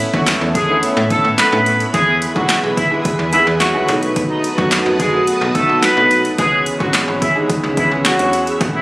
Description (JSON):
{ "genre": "dance-pop", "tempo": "108 BPM", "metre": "4/4", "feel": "straight", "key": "C# minor", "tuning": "A4 = 440 Hz", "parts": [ { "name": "clear grand piano", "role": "accompaniment", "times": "0.0-8.8 s", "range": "E3 to F#4", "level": "-20 LUFS", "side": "right 1 dB", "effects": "sidechain pumping" }, { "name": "soft string machine", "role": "sustained chords", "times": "0.1-8.8 s", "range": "F#4 to E6", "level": "-23 LUFS", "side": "equal", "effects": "ensemble chorus, sidechain pumping" }, { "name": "slap-like FM bass", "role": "bass", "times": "0.0-8.8 s", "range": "G#1 to A2", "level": "-22 LUFS", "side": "equal", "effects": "sidechain pumping" }, { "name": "punchy analog drum machine", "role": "drums", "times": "0.0-8.7 s", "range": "handclaps, hi-hat, kick drum, snare drum", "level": "-19 LUFS", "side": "equal", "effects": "overdrive" }, { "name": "clear horn section", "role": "melody", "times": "0.1-8.8 s", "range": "E3 to D#5", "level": "-16 LUFS", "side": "equal", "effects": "sidechain pumping, ping-pong delay" } ], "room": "light reverb", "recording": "recorded on a phone in the room, studio reverb", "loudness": "-13 LUFS", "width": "side -21 dB against mid", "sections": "0.0-8.8 A section", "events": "none", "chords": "0.0 Aadd9; 1.9 E; 3.9 B7; 6.4 C#m7", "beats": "0.27 0.83 1.39 | 1.94 2.50 3.05 3.61 | 4.16 4.72 5.27 5.83 | 6.38 6.94 7.50 8.05 | 8.61" }